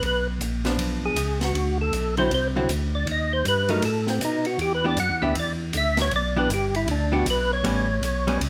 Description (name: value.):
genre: soul jazz organ trio.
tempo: 158 BPM.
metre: 4/4.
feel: swing 63% on 8ths.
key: unclear.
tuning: A4 = 439 Hz.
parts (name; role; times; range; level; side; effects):
percussive tonewheel organ; melody; 0.0-8.4 s; C4 to F#5; -27 LUFS; equal; slow rotary speaker, chorus vibrato.
tonewheel organ; bass; 0.0-8.5 s; G1 to B2; -28 LUFS; equal; overdrive, stopped rotary speaker.
open jazz drum kit; drums; 0.0-8.5 s; hi-hat, ride cymbal, snare drum; -35 LUFS; equal; none.
archtop guitar, miked and amplified; accompaniment; 0.7-8.4 s; D3 to G4; -29 LUFS; equal; none.
room: moderate large studio reverb, RT60 0.8 s.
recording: none.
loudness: -24 LUFS.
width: mono.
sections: 0.0-8.5 A section.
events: tonewheel organ solo 0.0-8.5.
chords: 0.0 G#dim7; 1.5 D9; 3.1 B7; 4.6 Em7; 7.6 A9.